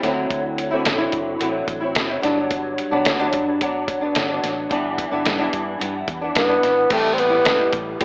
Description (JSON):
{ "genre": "indie pop, bedroom pop", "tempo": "109 BPM", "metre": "4/4", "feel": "straight", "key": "G major", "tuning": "A4 = 440 Hz", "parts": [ { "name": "flamenco guitar", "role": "accompaniment", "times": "0.0-8.0 s", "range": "G2 to E4", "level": "-21 LUFS", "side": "equal", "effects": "ensemble chorus, vibrato effect" }, { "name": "vintage muted fingered electric bass", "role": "bass", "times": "0.0-8.0 s", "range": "F#1 to A2", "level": "-35 LUFS", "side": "equal", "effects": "none" }, { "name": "lo-fi sampler-style drum kit", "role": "drums", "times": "0.0-8.0 s", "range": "crash cymbal, hi-hat, kick drum, snare drum", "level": "-23 LUFS", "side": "equal", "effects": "none" }, { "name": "warm bassoon", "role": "melody", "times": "6.4-8.0 s", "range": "A3 to C4", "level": "-17 LUFS", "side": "equal", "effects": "wide subtle chorus" } ], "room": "moderate spring reverb, RT60 2.6 s", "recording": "AM radio sound", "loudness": "-18 LUFS", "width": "side -34 dB against mid", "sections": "0.0-6.9 A section; 6.9-8.0 B section", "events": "none", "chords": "0.0 D9; 2.2 Gmaj7; 4.7 G6; 6.9 Am7" }